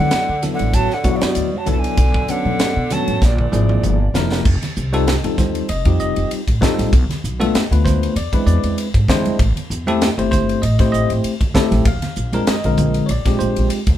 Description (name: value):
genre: electric jazz fusion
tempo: 97 BPM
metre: 4/4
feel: swing 54% on 16ths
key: F mixolydian from 4.5 s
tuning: A4 = 441 Hz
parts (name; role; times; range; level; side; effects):
- breathy jazz flute; melody; 0.0-4.2 s; D5 to A5; -23 LUFS; equal; none
- edgy tenor saxophone; second line; 0.0-4.2 s; Bb2 to F#3; -26 LUFS; right 6 dB; none
- bell-like tine electric piano; accompaniment; 0.0-13.8 s; D3 to F5; -20 LUFS; left 2 dB; medium stereo tremolo
- upright bass; bass; 0.0-14.0 s; F1 to E3; -19 LUFS; equal; none
- crisp fusion drum kit; drums; 0.1-14.0 s; crash cymbal, hi-hat, kick drum, ride cymbal, snare drum, toms; -20 LUFS; equal; none
- congas; percussion; 0.4-14.0 s; none; -25 LUFS; right 1 dB; none
room: light reverb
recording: band playing live in one room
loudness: -15 LUFS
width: side -12 dB against mid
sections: 0.0-4.5 A section; 4.5-14.0 B section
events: drum fill 3.2-4.5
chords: 0.0 D6; 2.0 Bm9; 3.2 Bb7#11; 4.5 F7; 6.9 Bm7b5; 8.2 E7b13; 9.4 Am7; 11.9 Bb9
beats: 0.12 0.74 1.36 | 1.98 2.60 3.22 3.84 | 4.46 5.08 5.70 6.31 | 6.93 7.55 8.16 8.78 | 9.40 10.01 10.63 11.24 | 11.86 12.48 13.09 13.71